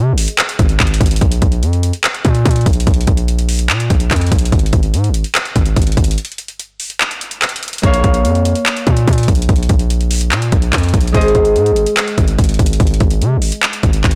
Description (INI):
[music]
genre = hip hop, trap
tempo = 145 BPM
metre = 4/4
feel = half-time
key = Bb minor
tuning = A4 = 444 Hz
[part]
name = concert harp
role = accompaniment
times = 0.0-1.3, 7.8-14.2 s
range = Ab3 to F5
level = -20 LUFS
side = equal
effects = none
[part]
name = distorted 808-style bass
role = bass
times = 0.0-14.2 s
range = Ab1 to C3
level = -16 LUFS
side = equal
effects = distortion
[part]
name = trap drum kit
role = drums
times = 0.2-14.2 s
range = handclaps, hi-hat, kick drum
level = -17 LUFS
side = equal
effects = none
[sound]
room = little or no reverb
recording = blown-out, overdriven recording, overdrive, faint mains hum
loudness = -14 LUFS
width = mono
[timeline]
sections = 0.0-1.2 A section; 1.2-14.2 B section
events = break 6.2-7.8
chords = 0.0 Ab; 1.2 Bb5; 4.5 N.C.; 7.8 Bbm; 11.1 Ab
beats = 0.39 0.80 | 1.21 1.63 2.04 2.46 | 2.87 3.28 3.70 4.11 | 4.52 4.94 5.35 5.76 | 6.18 6.59 7.01 7.42 | 7.83 8.25 8.66 9.07 | 9.49 9.90 10.32 10.73 | 11.14 11.56 11.97 12.39 | 12.80 13.21 13.63 14.04